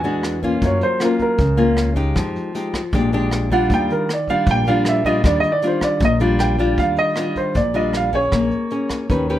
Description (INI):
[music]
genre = bossa nova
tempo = 156 BPM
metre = 4/4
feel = straight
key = Eb major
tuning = A4 = 441 Hz
[part]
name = warm baby grand piano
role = melody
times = 0.0-9.4 s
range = Bb4 to G#5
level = -20 LUFS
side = right 2 dB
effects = none
[part]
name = nylon-string guitar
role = accompaniment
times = 0.0-9.4 s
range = Bb2 to B4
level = -20 LUFS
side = left 2 dB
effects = none
[part]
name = upright bass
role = bass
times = 0.0-9.4 s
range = Bb1 to Gb2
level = -22 LUFS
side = equal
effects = none
[part]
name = vintage brush drum kit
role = drums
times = 0.0-9.4 s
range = hi-hat, kick drum, rim click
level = -25 LUFS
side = equal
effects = none
[sound]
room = light reverb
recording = none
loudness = -16 LUFS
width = side -12 dB against mid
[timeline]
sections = 0.0-6.8 A section; 6.8-9.4 B section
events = grand piano solo 0.0-6.8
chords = 0.0 E9; 0.6 Gbmaj7; 2.2 Fm9; 2.9 Bb6; 3.7 Ebmaj9; 8.3 Bbm7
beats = 0.24 | 0.63 1.01 1.40 1.78 | 2.17 2.55 2.94 3.32 | 3.71 4.09 4.48 4.86 | 5.25 5.63 6.02 6.40 | 6.79 7.17 7.56 7.94 | 8.33 8.71 9.10